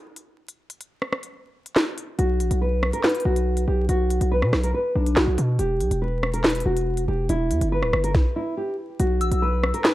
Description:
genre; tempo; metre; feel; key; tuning
hip hop, drill; 141 BPM; 4/4; half-time; B harmonic minor; A4 = 440 Hz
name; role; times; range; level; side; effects
drill drum kit; drums; 0.2-9.9 s; handclaps, hi-hat, kick drum, rim click, snare drum; -23 LUFS; equal; none
nylon-string guitar; melody; 2.2-9.9 s; D4 to B4; -25 LUFS; equal; low-pass filter
distorted 808-style bass; bass; 2.2-9.7 s; D1 to B2; -22 LUFS; equal; distortion
soft synth bell; second line; 9.2-9.9 s; E6; -28 LUFS; left 4 dB; chorus, phaser, digital delay
room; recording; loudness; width
digital ambience; dark, warm production, vinyl crackle; -20 LUFS; side -15 dB against mid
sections
0.0-9.0 A section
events
break 0.0-2.2; stop 8.1-9.0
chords
0.0 N.C.; 2.2 B5; 5.6 Em; 9.0 B5

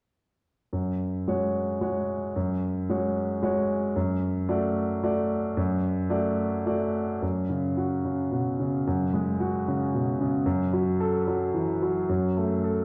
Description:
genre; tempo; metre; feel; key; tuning
classical; 111 BPM; 3/4; rubato; F# minor; A4 = 440 Hz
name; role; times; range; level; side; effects
clear grand piano; accompaniment; 0.7-12.8 s; F#2 to D5; -27 LUFS; equal; none
room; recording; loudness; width
wet recital hall reverb, RT60 1.7 s; recorded in a church or concert hall; -27 LUFS; mono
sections
0.7-7.2 A section; 7.2-12.8 B section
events
none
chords
0.7 F#sus2; 4.0 D/F#; 7.2 F#sus2; 10.4 F#m7

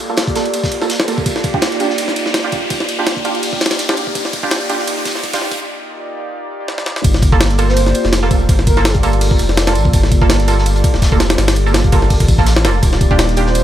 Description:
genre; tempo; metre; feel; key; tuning
drum and bass, jungle; 166 BPM; 4/4; swing 55% on 16ths; G minor; A4 = 441 Hz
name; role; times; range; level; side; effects
warbly tape-like pad; sustained chords; 0.0-13.6 s; Bb3 to D5; -22 LUFS; right 1 dB; chorus, built-in reverb
saturated sub bass; bass; 0.0-13.6 s; Eb1 to Bb1; -15 LUFS; equal; high-pass filter
crunchy breakbeat drum kit; drums; 0.0-13.6 s; hi-hat, snare drum, tambourine; -26 LUFS; left 1 dB; high-pass filter on hats, high-pass filter on snare, high-pass filter on perc, high-pass filter on room
jungle sampler-style drum kit; drums; 0.0-13.6 s; kick drum, ride cymbal, snare drum; -16 LUFS; equal; none
riser; sound effects; 0.0-5.6 s; none; -24 LUFS; left 1 dB; none
orchestra-hit-like synth stab; stabs; 0.1-13.5 s; Bb3 to A4; -21 LUFS; right 4 dB; built-in reverb, dub echo
breathy flute-like synth lead; melody; 7.7-9.0, 13.5-13.6 s; Bb4 to C5; -22 LUFS; right 2 dB; analog chorus, dub echo
room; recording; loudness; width
light reverb, small room ambience; high-pass filter; -12 LUFS; side -12 dB against mid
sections
0.0-7.0 A section; 7.0-13.6 B section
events
build-up 0.0-7.0; riser 0.0-5.6; filter sweep on synth stab 0.0-7.0; break 5.6-7.0; drum fill 6.7-7.0; drop 7.0-13.6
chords
0.0 Gm9; 1.3 Ebmaj9; 7.0 Gm9; 12.8 Ebmaj9

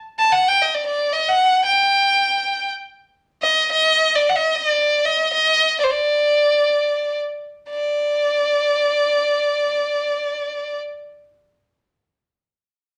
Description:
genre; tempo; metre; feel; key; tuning
Arabic maqam ensemble; free time; none; none; D maqam hijaz; A4 = 440 Hz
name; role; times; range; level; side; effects
clear violin; solo; 0.2-10.8 s; C5 to A5; -19 LUFS; equal; none
room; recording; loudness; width
wet studio reverb, RT60 0.7 s; none; -18 LUFS; mono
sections
0.0-7.7 A section; 7.7-11.6 B section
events
slowing down 4.2-7.7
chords
none

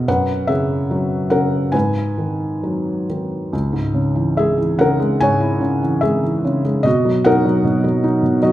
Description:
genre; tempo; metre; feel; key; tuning
classical, lyrical solo piano; 64-77 BPM; 4/4; rubato; unclear; A4 = 441 Hz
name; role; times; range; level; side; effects
felt-muted upright piano; solo; 0.0-8.5 s; C#2 to G#5; -15 LUFS; equal; none
room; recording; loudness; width
moderate recital hall reverb, RT60 1.3 s; minimal, uncompressed stereo recording; -15 LUFS; side -14 dB against mid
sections
0.0-3.5 A section; 3.5-8.5 B section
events
none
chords
0.1 F#sus4; 1.7 G#m7; 3.5 C#m; 6.9 B

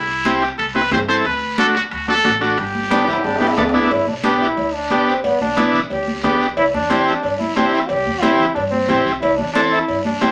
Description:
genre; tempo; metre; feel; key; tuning
latin, cumbia; 181 BPM; 4/4; straight; G major; A4 = 439 Hz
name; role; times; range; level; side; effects
bright trumpet; melody; 0.0-3.5 s; E4 to C5; -22 LUFS; equal; none
upright bass; bass; 0.0-10.3 s; G1 to G2; -34 LUFS; equal; none
combo organ; accompaniment; 0.3-10.3 s; A3 to A4; -20 LUFS; equal; none
congas; percussion; 0.3-10.3 s; none; -28 LUFS; equal; none
guiro; percussion; 0.3-10.3 s; none; -34 LUFS; equal; none
timbales and cowbell; percussion; 0.3-10.3 s; none; -26 LUFS; equal; none
bright trombone; second line; 2.9-10.3 s; B3 to G4; -24 LUFS; equal; none
room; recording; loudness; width
wet studio reverb, RT60 0.5 s; none; -17 LUFS; mono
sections
0.0-3.9 A section; 3.9-10.3 B section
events
drum fill 2.9-3.9; trombone solo 3.9-10.3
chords
0.0 C; 1.3 D; 2.6 G; 6.6 C

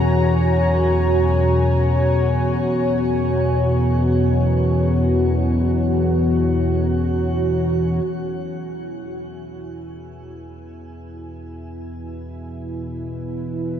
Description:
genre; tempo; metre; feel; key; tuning
dark ambient drone; free time; none; none; unclear; A4 = 442 Hz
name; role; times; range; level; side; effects
dark analog pad; sustained chords; 0.0-13.8 s; E4 to A#5; -23 LUFS; equal; chorus, shimmer reverb
analog drone; drone; 0.0-13.8 s; E2 to B2; -20 LUFS; left 1 dB; chorus
room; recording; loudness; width
wet huge ambient reverb, RT60 7.4 s; none; -17 LUFS; side -9 dB against mid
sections
0.0-8.1 A section; 8.1-13.8 B section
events
fade-in on synth drone 8.1-13.8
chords
0.0 F#add9; 8.1 E

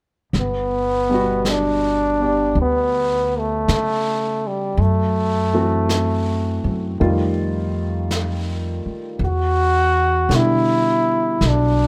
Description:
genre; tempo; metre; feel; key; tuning
jazz ballad; 54 BPM; 4/4; swing 68% on 8ths; G major; A4 = 440 Hz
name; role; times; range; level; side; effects
upright bass; bass; 0.3-11.9 s; G1 to C#3; -24 LUFS; equal; none
vintage brush drum kit; drums; 0.3-11.9 s; brushed snare drum, hi-hat, snare drum; -32 LUFS; equal; none
bright trombone; melody; 0.4-11.9 s; G3 to F#4; -21 LUFS; equal; none
warm concert grand piano; accompaniment; 1.1-11.9 s; B2 to D5; -26 LUFS; equal; none
room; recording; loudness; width
light reverb; none; -19 LUFS; mono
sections
0.3-11.9 A section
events
none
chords
0.3 Gmaj7; 4.8 F#m7b5; 7.0 F9; 9.2 Em7

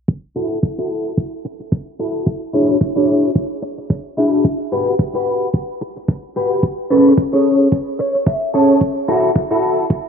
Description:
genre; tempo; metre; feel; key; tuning
nu-disco, nu disco; 110 BPM; 4/4; swing 56% on 16ths; F# minor; A4 = 439 Hz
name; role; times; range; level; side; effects
electronic kick drum; drums; 0.1-10.0 s; none; -17 LUFS; right 1 dB; high-pass filter on kick
clean electric guitar; riff; 0.4-9.8 s; C#4 to A5; -15 LUFS; equal; ensemble chorus, low-pass filter
room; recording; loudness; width
wet plate reverb, RT60 2.6 s; bright 1980s-style digital production, low-pass filter; -15 LUFS; side -6 dB against mid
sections
0.1-10.1 A section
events
filter sweep on clean electric guitar 0.1-10.1; filter sweep 0.1-10.1; clean electric guitar fill 7.7-8.8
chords
0.1 F#m7; 2.3 E13; 4.4 Gmaj7; 6.6 Amaj9; 8.8 F#m7

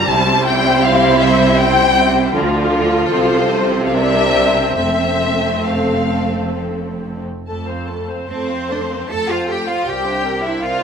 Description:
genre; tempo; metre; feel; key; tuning
classical, slow romantic movement for string orchestra; 66-81 BPM; 3/4; rubato; F major; A4 = 440 Hz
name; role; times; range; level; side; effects
warm studio violin section; melody; 0.0-10.8 s; C5 to A5; -18 LUFS; left 4 dB; none
rich studio violin section; second line; 0.0-10.8 s; C4 to A5; -19 LUFS; left 1 dB; none
rich studio viola section; accompaniment; 0.0-10.8 s; F3 to C5; -21 LUFS; right 1 dB; none
rich studio cello section; bass; 0.0-10.8 s; F2 to A4; -21 LUFS; right 4 dB; none
rich studio double bass section; bass; 0.0-10.8 s; F1 to F2; -24 LUFS; right 3 dB; none
room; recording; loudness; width
wet recital hall reverb, RT60 1.3 s; minimal, uncompressed stereo recording; -13 LUFS; side -7 dB against mid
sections
0.0-7.5 A section; 7.5-10.8 B section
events
none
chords
0.1 C; 2.3 Dm; 3.1 F/C; 3.9 C9; 4.8 F; 9.9 C9

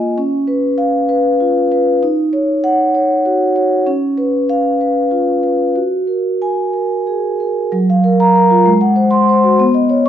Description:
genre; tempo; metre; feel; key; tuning
classical, contemporary piece for solo vibraphone; 65 BPM (dotted quarters); 6/8; straight; F# major; A4 = 440 Hz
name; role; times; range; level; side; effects
vibraphone with soft mallets; solo; 0.0-10.1 s; F#3 to C#6; -12 LUFS; equal; none
room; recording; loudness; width
moderate recital hall reverb, RT60 1.5 s; dark, warm production; -12 LUFS; side -10 dB against mid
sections
0.0-7.7 A section; 7.7-10.1 B section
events
none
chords
0.2 C#7; 2.0 D#m7; 3.9 C#7; 5.8 F#add9; 7.7 F#maj7; 8.7 G#7

